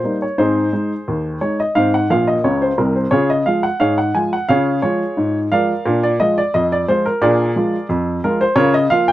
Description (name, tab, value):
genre	ragtime piano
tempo	88 BPM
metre	2/4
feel	straight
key	unclear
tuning	A4 = 441 Hz
part	warm upright piano	solo	0.0-9.1 s	Bb1 to Ab5	-14 LUFS	equal	none
room	light reverb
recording	none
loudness	-14 LUFS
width	side -14 dB against mid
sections	0.0-9.1 A section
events	upright piano fill 2.1-3.1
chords	0.4 Ab; 3.1 Db; 5.9 Bb7; 8.6 Bbm/Db